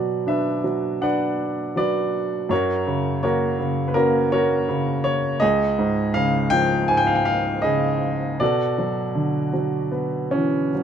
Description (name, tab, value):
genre	classical, lyrical solo piano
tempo	81 BPM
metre	4/4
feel	rubato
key	B minor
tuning	A4 = 442 Hz
part	clear baby grand piano	solo	0.0-10.8 s	C#2 to G#5	-19 LUFS	equal	none
room	light reverb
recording	minimal, uncompressed stereo recording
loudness	-19 LUFS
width	side -8 dB against mid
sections	0.0-10.8 A section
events	none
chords	0.0 Bm; 2.5 F#; 5.4 C#; 8.4 Bm7